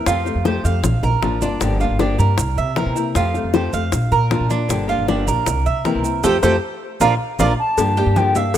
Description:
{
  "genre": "latin, Cuban son and guajira",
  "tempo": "156 BPM",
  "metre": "4/4",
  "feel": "straight",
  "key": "F major",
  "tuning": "A4 = 440 Hz",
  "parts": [
    { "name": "nylon-string guitar", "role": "accompaniment", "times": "0.0-8.6 s", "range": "C3 to G4", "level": "-24 LUFS", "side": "left 6 dB", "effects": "none" },
    { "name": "Cuban tres", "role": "arpeggios", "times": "0.0-8.6 s", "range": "D4 to F5", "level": "-21 LUFS", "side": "right 6 dB", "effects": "none" },
    { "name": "upright bass", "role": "bass", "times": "0.0-8.6 s", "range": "G1 to C3", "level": "-20 LUFS", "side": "equal", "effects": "none" },
    { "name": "bongos and cowbell", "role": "percussion", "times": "0.1-8.6 s", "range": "none", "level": "-23 LUFS", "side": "left 6 dB", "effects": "none" },
    { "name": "congas", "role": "percussion", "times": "0.1-8.6 s", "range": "none", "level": "-27 LUFS", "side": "left 1 dB", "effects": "none" },
    { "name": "maracas", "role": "percussion", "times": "0.1-8.6 s", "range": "none", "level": "-31 LUFS", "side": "right 8 dB", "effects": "none" },
    { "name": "silver concert flute", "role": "melody", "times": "7.6-8.6 s", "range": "F5 to A5", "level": "-19 LUFS", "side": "left 1 dB", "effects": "none" }
  ],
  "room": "light reverb, small room ambience",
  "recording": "rough home demo mix",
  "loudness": "-16 LUFS",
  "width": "side -10 dB against mid",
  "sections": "0.0-7.8 A section",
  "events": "drum fill 0.6-1.6, 6.8-7.8; band accent 6.2-7.8",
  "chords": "0.1 Fadd9; 0.8 Bb; 1.6 Gm7; 2.4 C7; 3.2 Fadd9; 3.9 Bb; 4.7 Gm7; 5.5 C7; 6.2 Fadd9; 7.0 Bb; 7.8 Gm7",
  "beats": "| 0.07 0.46 0.84 1.23 | 1.61 2.00 2.38 2.77 | 3.15 3.54 3.93 4.31 | 4.70 5.08 5.47 5.85 | 6.24 6.62 7.01 7.40 | 7.78 8.17 8.55"
}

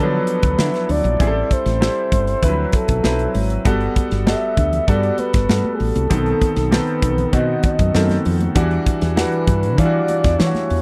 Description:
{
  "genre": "polished 1980s jazz-funk pop",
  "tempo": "98 BPM",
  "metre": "4/4",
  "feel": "straight",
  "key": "B minor",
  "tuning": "A4 = 442 Hz",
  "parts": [
    { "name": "breathy flugelhorn", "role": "melody", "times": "0.0-10.8 s", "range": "G#4 to E5", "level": "-24 LUFS", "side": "equal", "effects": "none" },
    { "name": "clear baby grand piano", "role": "accompaniment", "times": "0.0-10.8 s", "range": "D#3 to B4", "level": "-24 LUFS", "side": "equal", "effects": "analog chorus" },
    { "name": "woody fretless electric bass", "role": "bass", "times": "0.0-10.8 s", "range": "G1 to E3", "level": "-22 LUFS", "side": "equal", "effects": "subtle chorus" },
    { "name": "modern studio drum kit", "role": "drums", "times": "0.3-10.8 s", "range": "hi-hat, kick drum, snare drum", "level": "-22 LUFS", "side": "equal", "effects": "none" },
    { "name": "congas", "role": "percussion", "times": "4.0-10.7 s", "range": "none", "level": "-31 LUFS", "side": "equal", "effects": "none" }
  ],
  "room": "light reverb",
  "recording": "dry, close 1970s-style studio recording",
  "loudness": "-18 LUFS",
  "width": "mono",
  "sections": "0.0-10.8 A section",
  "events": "none",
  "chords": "0.0 D6; 1.2 Am7; 2.4 D13; 3.7 Gmaj9; 6.1 B7b9; 8.6 Em9",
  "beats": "0.59 | 1.20 1.81 2.43 3.04 | 3.65 4.26 4.88 5.49 | 6.10 6.72 7.33 7.94 | 8.56 9.17 9.78 10.40"
}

